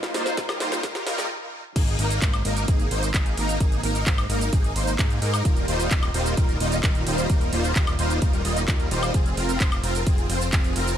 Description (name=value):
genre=EDM, festival progressive house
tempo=130 BPM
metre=4/4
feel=straight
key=unclear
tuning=A4 = 439 Hz
part: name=supersaw chords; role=riff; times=0.0-11.0 s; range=G3 to Eb5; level=-26 LUFS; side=equal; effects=ensemble chorus, sidechain pumping, digital delay
part: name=house drum kit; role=drums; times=0.0-11.0 s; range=crash cymbal, handclaps, hi-hat, ride cymbal, shaker, snare drum, woodblock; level=-29 LUFS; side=right 1 dB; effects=none
part: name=electronic kick drum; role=drums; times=0.4-10.6 s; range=none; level=-22 LUFS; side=equal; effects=none
part: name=fat analog bass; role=bass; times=1.8-11.0 s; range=Eb1 to Ab2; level=-26 LUFS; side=equal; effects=tube saturation, sidechain pumping
room=digital ambience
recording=high-pass filter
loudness=-20 LUFS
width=side -10 dB against mid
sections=0.0-1.8 A section; 1.8-11.0 B section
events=build-up 0.0-1.8; drum fill 0.0-1.3; stop 1.3-1.8; drop 1.8-11.0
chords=0.0 Ebadd9; 1.8 Absus2; 5.5 Ebadd9; 9.1 Fm